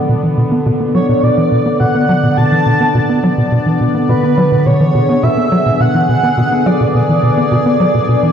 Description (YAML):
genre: ambient, sequencer-driven space music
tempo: 105 BPM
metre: 4/4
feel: straight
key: B dorian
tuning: A4 = 441 Hz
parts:
  - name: sweeping resonant pad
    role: sustained chords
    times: 0.0-8.3 s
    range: D3 to D5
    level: -15 LUFS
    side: equal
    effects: chorus, phaser
  - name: tight sequencer bass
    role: riff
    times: 0.1-8.3 s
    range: B2 to B3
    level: -14 LUFS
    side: equal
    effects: wide subtle chorus, ping-pong delay
  - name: breathy flute-like synth lead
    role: melody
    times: 0.9-8.3 s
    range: B4 to A5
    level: -16 LUFS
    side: right 1 dB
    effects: ensemble chorus, ping-pong delay
room: wet concert hall reverb, RT60 2.0 s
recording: dark, warm production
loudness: -10 LUFS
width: side -8 dB against mid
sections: 0.0-8.3 A section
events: filter sweep on analog synth bass 0.0-8.3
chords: 0.0 Bm